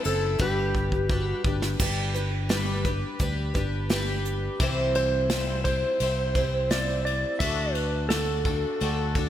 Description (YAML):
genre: folk rock and heartland rock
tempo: 86 BPM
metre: 4/4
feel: straight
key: G major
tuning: A4 = 439 Hz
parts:
  - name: clean lap steel guitar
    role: melody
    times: 0.0-9.3 s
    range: G4 to E5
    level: -29 LUFS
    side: equal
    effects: none
  - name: picked twelve-string acoustic guitar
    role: accompaniment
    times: 0.0-9.3 s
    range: C3 to C5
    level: -29 LUFS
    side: left 1 dB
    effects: lush chorus
  - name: soft brush drum kit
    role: drums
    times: 0.0-9.3 s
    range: crash cymbal, hi-hat, kick drum, ride cymbal, snare drum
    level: -29 LUFS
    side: equal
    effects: none
  - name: fingered electric bass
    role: bass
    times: 0.1-9.3 s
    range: F#1 to D2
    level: -29 LUFS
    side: equal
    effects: none
room: light reverb, small room reverb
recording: bright 1980s-style digital production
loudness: -24 LUFS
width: side -11 dB against mid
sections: 0.0-1.8 A section; 1.8-4.6 B section; 4.6-9.3 C section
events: drum fill 0.4-1.8; electric slide guitar solo 4.6-9.3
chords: 0.4 G; 4.6 C; 7.4 D